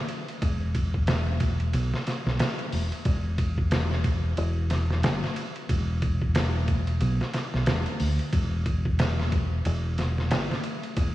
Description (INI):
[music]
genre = trip hop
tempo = 91 BPM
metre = 4/4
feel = swing 59% on 16ths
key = E minor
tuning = A4 = 440 Hz
[part]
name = trip hop sampler-style drum kit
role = drums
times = 0.1-11.1 s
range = hi-hat, kick drum, ride cymbal, snare drum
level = -27 LUFS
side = equal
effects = none
[part]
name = deep dub fingered electric bass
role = bass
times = 0.4-11.1 s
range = E1 to D2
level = -26 LUFS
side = equal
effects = none
[sound]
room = moderate lush hall reverb, RT60 2.9 s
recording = dreamy mix soaked in reverb, vinyl crackle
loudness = -24 LUFS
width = side -15 dB against mid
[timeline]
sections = 0.0-11.1 A section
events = none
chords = none